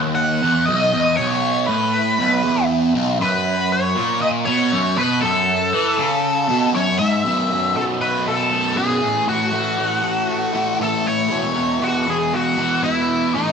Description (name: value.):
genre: rock.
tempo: 118 BPM.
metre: 4/4.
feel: straight.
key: B mixolydian.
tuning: A4 = 440 Hz.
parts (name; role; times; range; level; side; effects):
fuzz guitar; riff; 0.0-13.5 s; B1 to A3; -19 LUFS; right 1 dB; distortion, phaser.
octave-fuzz lead guitar; melody; 0.1-13.5 s; D#4 to F#5; -20 LUFS; left 1 dB; wah, distortion.
room: wet stone room reverb, RT60 1.3 s.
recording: band playing live in one room.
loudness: -16 LUFS.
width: side -6 dB against mid.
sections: 0.0-7.2 A section; 7.2-13.5 B section.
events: none.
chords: 0.0 B; 3.2 F#m; 7.2 Bsus4; 9.0 A5; 11.3 E5.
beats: 0.16 0.67 | 1.18 1.68 2.19 2.69 | 3.20 3.70 4.21 4.71 | 5.22 5.72 6.23 6.74 | 7.24 7.75 8.26 8.77 | 9.27 9.78 10.29 10.80 | 11.31 11.82 12.33 12.84 | 13.34.